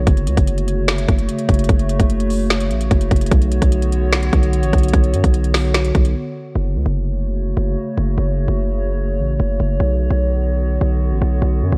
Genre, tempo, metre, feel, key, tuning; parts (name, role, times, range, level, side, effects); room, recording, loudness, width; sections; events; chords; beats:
hip hop, trap; 148 BPM; 4/4; half-time; F# minor; A4 = 444 Hz
warbly tape-like pad; sustained chords; 0.0-11.8 s; C#3 to C#5; -25 LUFS; equal; chorus, built-in reverb
distorted 808-style bass; bass; 0.0-11.8 s; F#1 to F#2; -20 LUFS; equal; distortion
trap drum kit; drums; 0.1-6.1 s; finger snaps, hi-hat, kick drum, snare drum; -19 LUFS; equal
digital ambience; worn, warbling old tape, cassette tape, warbly pitch drift; -18 LUFS; mono
0.0-6.6 A section; 6.6-11.8 B section
break 6.2-6.6
0.1 F#m; 3.3 Bmadd9; 6.6 F#m; 9.8 Bmadd9
| 0.07 0.47 0.88 1.29 | 1.69 2.10 2.50 2.91 | 3.31 3.72 4.12 4.53 | 4.93 5.34 5.75 6.15 | 6.56 6.96 7.37 7.77 | 8.18 8.58 8.99 9.39 | 9.80 10.21 10.61 11.02 | 11.42